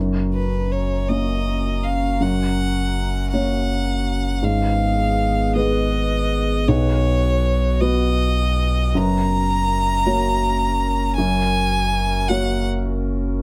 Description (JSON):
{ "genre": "neoclassical piano and strings", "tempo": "54 BPM (dotted quarters)", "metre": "6/8", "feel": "rubato", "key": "F# major", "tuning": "A4 = 440 Hz", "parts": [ { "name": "felt-muted upright piano", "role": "accompaniment", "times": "0.0-13.4 s", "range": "B1 to C#5", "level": "-25 LUFS", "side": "equal", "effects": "none" }, { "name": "warbly tape-like pad", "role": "sustained chords", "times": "0.0-13.4 s", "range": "B3 to A#5", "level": "-31 LUFS", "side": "equal", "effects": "chorus, built-in reverb" }, { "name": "pure sine sub bass", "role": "bass", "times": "0.0-13.4 s", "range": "F#1 to B1", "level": "-25 LUFS", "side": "equal", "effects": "none" }, { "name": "clear violin", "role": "melody", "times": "0.3-12.7 s", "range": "B4 to A#5", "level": "-26 LUFS", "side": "equal", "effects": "none" } ], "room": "little or no reverb", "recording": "close, detailed microphones", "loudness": "-20 LUFS", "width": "mono", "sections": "0.0-13.4 A section", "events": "none", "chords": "0.0 F#; 4.4 G#m; 6.7 B; 9.0 F#" }